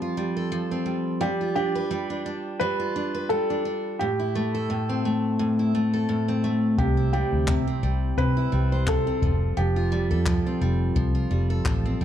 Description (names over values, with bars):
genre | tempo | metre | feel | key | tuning
acoustic pop | 86 BPM | 4/4 | swing 55% on 16ths | C major | A4 = 440 Hz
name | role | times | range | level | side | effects
picked steel-string acoustic guitar | accompaniment | 0.0-12.0 s | A2 to C5 | -25 LUFS | equal | none
clear upright piano | melody | 1.2-10.6 s | G4 to B4 | -28 LUFS | right 1 dB | none
vintage muted fingered electric bass | bass | 6.8-12.0 s | F1 to C3 | -24 LUFS | equal | none
jazz brush drum kit | drums | 6.8-11.8 s | handclaps, kick drum | -27 LUFS | left 1 dB | none
room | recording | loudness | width
light reverb | dark, warm production | -22 LUFS | side -10 dB against mid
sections
0.0-12.0 A section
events
none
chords
0.0 Fadd9; 1.2 G7; 4.0 Am; 6.8 C; 9.2 Fadd9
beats
0.52 | 1.21 1.91 2.61 3.30 | 4.00 4.70 5.39 6.09 | 6.79 7.48 8.18 8.87 | 9.57 10.27 10.96 11.66